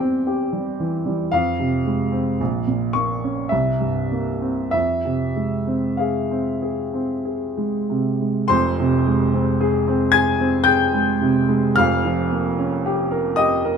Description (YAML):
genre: classical, romantic nocturne for solo piano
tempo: 47-57 BPM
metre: 3/4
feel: rubato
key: F minor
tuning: A4 = 440 Hz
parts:
  - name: warm baby grand piano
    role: solo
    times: 0.0-13.8 s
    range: F1 to Ab6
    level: -18 LUFS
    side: equal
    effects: none
room: light reverb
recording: close, detailed microphones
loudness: -18 LUFS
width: side -6 dB against mid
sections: 0.0-8.5 A section; 8.5-13.8 A section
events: none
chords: 0.0 C/E; 1.3 Fm; 2.4 Bbm; 3.5 C7; 4.7 Fm; 11.8 Gm7b5/F